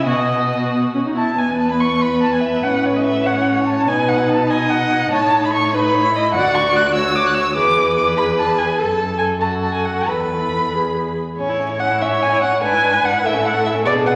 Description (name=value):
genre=quick classical-period movement for string quartet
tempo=97 BPM (dotted quarters)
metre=6/8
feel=rubato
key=A major from 6.3 s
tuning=A4 = 440 Hz
part: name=dark violin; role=melody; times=0.0-14.1 s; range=C#5 to F#6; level=-21 LUFS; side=equal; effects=none
part: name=rich violin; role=second line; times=0.0-14.2 s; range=B3 to D#5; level=-24 LUFS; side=equal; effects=none
part: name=dark viola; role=accompaniment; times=0.0-14.2 s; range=B3 to C#5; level=-23 LUFS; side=equal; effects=none
part: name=rich cello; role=bass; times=0.0-14.2 s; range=D2 to B2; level=-27 LUFS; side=equal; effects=none
room=wet scoring stage reverb, RT60 1.7 s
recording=vinyl crackle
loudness=-17 LUFS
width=mono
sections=0.0-1.4 A section; 1.4-11.4 A section; 11.4-14.2 B section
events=none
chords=0.1 B; 1.4 E5; 2.6 F#m/A; 3.9 B; 5.1 B7/A; 6.3 D; 7.6 E7; 8.8 F#m; 10.1 Esus4; 10.7 E; 11.4 A; 12.6 E7/G#; 13.2 A